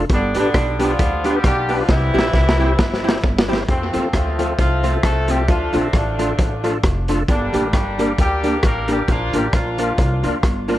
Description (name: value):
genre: ska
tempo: 134 BPM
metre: 4/4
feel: swing 56% on 8ths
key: F major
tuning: A4 = 440 Hz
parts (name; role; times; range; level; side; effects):
- bright tonewheel organ; stabs; 0.0-10.8 s; C4 to C5; -25 LUFS; left 4 dB; chorus vibrato, fast rotary speaker, tape echo
- upright bass; bass; 0.0-10.8 s; F1 to F2; -23 LUFS; equal; none
- clear horn section; melody; 0.1-10.4 s; C3 to Bb4; -22 LUFS; equal; tape echo
- crunchy breakbeat drum kit; drums; 0.1-10.8 s; hi-hat, kick drum, rim click, snare drum; -19 LUFS; equal; tape echo
- archtop guitar, miked and amplified; accompaniment; 0.3-10.8 s; F3 to G4; -23 LUFS; right 3 dB; none
room: light reverb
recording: none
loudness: -16 LUFS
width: side -14 dB against mid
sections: 0.0-3.7 A section; 3.7-10.8 B section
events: drum fill 1.9-3.7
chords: 0.1 G; 1.9 C; 3.7 F; 5.5 Dm; 7.3 Gm; 9.1 Bb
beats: | 0.10 0.55 0.99 1.44 | 1.89 2.34 2.79 3.24 | 3.69 4.13 4.58 5.03 | 5.48 5.93 6.38 6.83 | 7.28 7.73 8.18 8.63 | 9.08 9.53 9.98 10.43